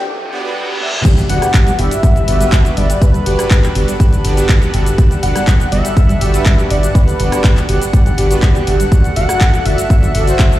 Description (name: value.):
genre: progressive house.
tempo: 122 BPM.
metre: 4/4.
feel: straight.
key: G major.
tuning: A4 = 440 Hz.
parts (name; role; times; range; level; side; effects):
wide unison lead; melody; 0.0-10.6 s; B4 to F#5; -21 LUFS; left 1 dB; wide subtle chorus, dub echo.
lush unison pad; sustained chords; 0.0-10.6 s; G3 to F#5; -26 LUFS; left 1 dB; chorus, sidechain pumping.
soft round pluck; arpeggios; 0.0-10.5 s; G3 to D5; -22 LUFS; equal; ensemble chorus, sidechain pumping, dub echo.
riser, reverse cymbal and impact; sound effects; 0.0-3.0 s; none; -23 LUFS; equal; none.
soft supersaw; stabs; 0.3-10.6 s; B3 to E5; -22 LUFS; right 3 dB; sidechain pumping, dub echo.
house drum kit; drums; 0.8-10.6 s; crash cymbal, handclaps, hi-hat, rim click, shaker, toms; -23 LUFS; left 1 dB; sidechain pumping on hats, sidechain pumping on toms, sidechain pumping on cymbals, sidechain pumping on perc.
round analog bass; bass; 1.0-10.5 s; G1; -16 LUFS; equal; tube saturation, sidechain pumping.
electronic kick drum; drums; 1.0-10.5 s; none; -10 LUFS; equal; none.
drifting glass-harmonics texture; texture; 2.0-10.6 s; F#5; -31 LUFS; right 1 dB; chorus, built-in reverb, sidechain pumping.
room: little or no reverb.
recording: played on a big sound system in a bare room, large studio reverb, high-pass filter.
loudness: -10 LUFS.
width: side -15 dB against mid.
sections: 0.0-1.0 A section; 1.0-10.6 B section.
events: build-up 0.0-1.0; riser 0.0-1.0; filter sweep 0.0-1.0; break 0.1-1.0; reverse cymbal 0.1-1.0; drum fill 0.8; drop 1.0-10.6; impact 1.0-3.0.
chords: 0.0 Gmaj7; 8.9 D/G.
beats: 0.07 0.56 | 1.05 1.54 2.03 2.52 | 3.02 3.51 4.00 4.49 | 4.98 5.47 5.97 6.46 | 6.95 7.44 7.93 8.43 | 8.92 9.41 9.90 10.39.